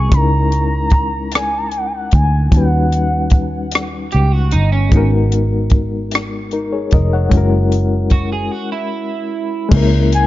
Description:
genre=slow six-eight R&B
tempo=50 BPM (dotted quarters)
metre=6/8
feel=straight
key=C# dorian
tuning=A4 = 440 Hz
part: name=gliding portamento lead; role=melody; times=0.0-3.7, 10.1-10.3 s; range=F#5 to C#6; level=-21 LUFS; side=equal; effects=chorus, tape echo
part: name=electric guitar at the edge of break-up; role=second line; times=0.0-0.1, 4.1-9.7 s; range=C#4 to G#4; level=-24 LUFS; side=right 7 dB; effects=analog chorus
part: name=barky reed electric piano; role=accompaniment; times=0.0-10.3 s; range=F#3 to F#5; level=-20 LUFS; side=left 4 dB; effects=tremolo
part: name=vintage muted fingered electric bass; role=bass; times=0.0-10.3 s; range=E#1 to D#2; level=-16 LUFS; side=equal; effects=none
part: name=compact cocktail drum kit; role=drums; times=0.1-10.3 s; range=crash cymbal, hi-hat, kick drum, rim click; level=-14 LUFS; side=equal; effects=vintage 12-bit sampler grit
room=small room ambience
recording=dark, warm production, nothing above 7.5 kHz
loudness=-13 LUFS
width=side -15 dB against mid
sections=0.0-9.7 A section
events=break 8.5-9.7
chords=0.1 C#m69; 2.5 D#7alt; 4.9 G#m9; 7.3 F#9; 9.7 C#m6

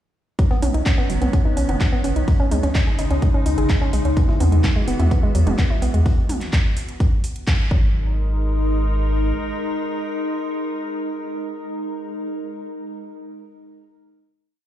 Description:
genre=melodic techno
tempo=127 BPM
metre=4/4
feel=straight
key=G# minor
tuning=A4 = 440 Hz
part: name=evolving wavetable pad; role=sustained chords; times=0.7-12.3 s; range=C#3 to A#4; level=-27 LUFS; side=left 1 dB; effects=chorus, built-in reverb, sidechain pumping
part: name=woody wave-folded pluck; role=arpeggios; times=0.4-8.2 s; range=F#3 to G#4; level=-26 LUFS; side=equal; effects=chorus, sidechain pumping, ping-pong delay
part: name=breakbeat sampler-style drum kit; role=drums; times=0.4-7.6 s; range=hi-hat, snare drum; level=-43 LUFS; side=equal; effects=none
part: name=electronic kick drum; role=drums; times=0.4-7.8 s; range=none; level=-18 LUFS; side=equal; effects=none
part: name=house drum kit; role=drums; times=0.4-7.6 s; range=handclaps, hi-hat, toms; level=-29 LUFS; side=right 1 dB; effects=none
part: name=round analog bass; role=bass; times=0.6-9.3 s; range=E1 to E2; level=-19 LUFS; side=equal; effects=sidechain pumping
room=light reverb, digital ambience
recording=played on a big sound system in a bare room, stone room reverb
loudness=-18 LUFS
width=side -12 dB against mid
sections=0.4-7.9 drop; 7.9-11.7 final hit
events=drop 0.4-7.9; band accent 7.5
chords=0.4 Badd9; 2.3 C#sus2; 4.2 Eadd9; 6.1 N.C.; 7.7 G#5

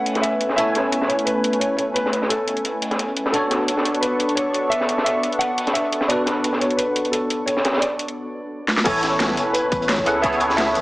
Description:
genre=liquid drum and bass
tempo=174 BPM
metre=4/4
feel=straight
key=A major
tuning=A4 = 440 Hz
part: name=dark grand piano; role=melody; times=0.0-10.8 s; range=A4 to F#5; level=-23 LUFS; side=equal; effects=dub echo
part: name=bell-like tine electric piano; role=accompaniment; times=0.0-10.8 s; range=B3 to G#5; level=-24 LUFS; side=equal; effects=ensemble chorus, dub echo
part: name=lush unison pad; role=sustained chords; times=0.0-10.8 s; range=A3 to C#6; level=-26 LUFS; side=equal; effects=chorus, sidechain pumping
part: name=crunchy breakbeat drum kit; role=drums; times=0.1-10.8 s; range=hi-hat, snare drum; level=-27 LUFS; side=equal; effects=high-pass filter on hats, low-pass filter on hats, high-pass filter on snare, low-pass filter on snare, high-pass filter on room, low-pass filter on room
part: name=drum and bass drum kit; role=drums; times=0.1-10.8 s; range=crash cymbal, hi-hat, snare drum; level=-24 LUFS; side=equal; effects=overdrive
part: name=saturated sub bass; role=bass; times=8.9-10.8 s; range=E1 to C#2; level=-36 LUFS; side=equal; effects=none
part: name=electronic kick drum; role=drums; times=8.9-10.3 s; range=none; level=-26 LUFS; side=equal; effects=overdrive
room=light reverb, studio reverb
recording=small speaker sound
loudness=-18 LUFS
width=side -20 dB against mid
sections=0.0-8.9 A section; 8.9-10.8 B section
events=filter sweep on analog synth pad 0.0-8.9; break 8.2-8.9; drum fill 8.7; drop 8.9-10.8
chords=0.0 Amaj9; 3.3 Bm9; 8.9 Amaj9

